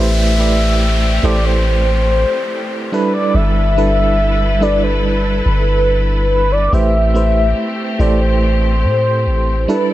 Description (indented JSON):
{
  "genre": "contemporary R&B",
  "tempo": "71 BPM",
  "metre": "4/4",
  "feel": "straight",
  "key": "unclear",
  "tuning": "A4 = 440 Hz",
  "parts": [
    { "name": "mellow horn-like synth lead", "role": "melody", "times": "0.0-9.9 s", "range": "B4 to E5", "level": "-18 LUFS", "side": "left 1 dB", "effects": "chorus, phaser" },
    { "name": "FM electric piano with tremolo", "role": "accompaniment", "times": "0.0-9.9 s", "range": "G3 to D5", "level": "-20 LUFS", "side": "right 3 dB", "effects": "none" },
    { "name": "muted studio string section", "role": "sustained chords", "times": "0.0-9.9 s", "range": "G3 to D5", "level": "-24 LUFS", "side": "left 1 dB", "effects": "none" },
    { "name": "long sustained 808-style bass", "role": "bass", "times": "0.0-9.7 s", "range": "G1 to A2", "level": "-15 LUFS", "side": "equal", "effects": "none" },
    { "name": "downlifter", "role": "sound effects", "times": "0.0-6.7 s", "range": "none", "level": "-26 LUFS", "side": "equal", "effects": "none" }
  ],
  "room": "little or no reverb",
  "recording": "none",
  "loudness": "-12 LUFS",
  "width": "side -14 dB against mid",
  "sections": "0.0-9.9 A section",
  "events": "none",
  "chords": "0.0 Am7; 2.9 G69; 6.7 Am7"
}